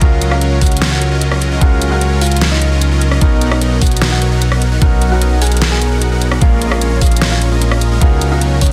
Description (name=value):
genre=future bass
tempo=150 BPM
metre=4/4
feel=half-time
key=unclear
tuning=A4 = 439 Hz
part: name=thumb-piano-like synth pluck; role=melody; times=0.0-8.7 s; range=Db4 to Ab5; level=-25 LUFS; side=equal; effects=chorus, sidechain pumping, tape echo
part: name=warm grand piano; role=accompaniment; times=0.0-8.7 s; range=Cb3 to Bb4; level=-26 LUFS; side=equal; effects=sidechain pumping, delay
part: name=supersaw chords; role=riff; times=0.0-8.7 s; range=Gb3 to F#5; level=-23 LUFS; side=equal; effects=sidechain pumping
part: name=fat analog bass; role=bass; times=0.0-8.7 s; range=Bb1 to Db2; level=-16 LUFS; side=equal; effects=sidechain pumping
part: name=electronic kick drum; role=drums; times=0.0-8.7 s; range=none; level=-14 LUFS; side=equal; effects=overdrive
part: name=pop drum kit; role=drums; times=0.0-8.7 s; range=hi-hat, rim click, snare drum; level=-21 LUFS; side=equal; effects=overdrive
room=digital ambience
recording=dense, heavily limited modern master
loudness=-13 LUFS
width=mono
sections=0.0-8.7 A section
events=none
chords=0.0 Gbmaj7/Db; 3.2 Bmaj7; 6.4 Bbm7; 8.0 Db13sus4